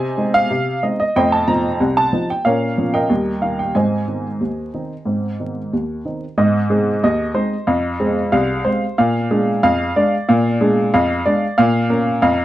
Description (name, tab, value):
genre	ragtime piano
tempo	92 BPM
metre	2/4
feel	straight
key	Ab major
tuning	A4 = 440 Hz
part	warm upright piano	solo	0.0-12.4 s	C2 to Bb5	-15 LUFS	equal	none
room	moderate studio reverb, RT60 0.5 s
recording	dark, warm production, vinyl crackle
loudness	-15 LUFS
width	side -14 dB against mid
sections	0.0-6.4 A section; 6.4-12.4 B section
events	none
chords	0.0 Ab/C; 1.1 F7; 2.4 Bbm; 3.1 Eb; 3.7 Ab; 7.7 Fm; 9.0 Bb7; 11.6 Bbm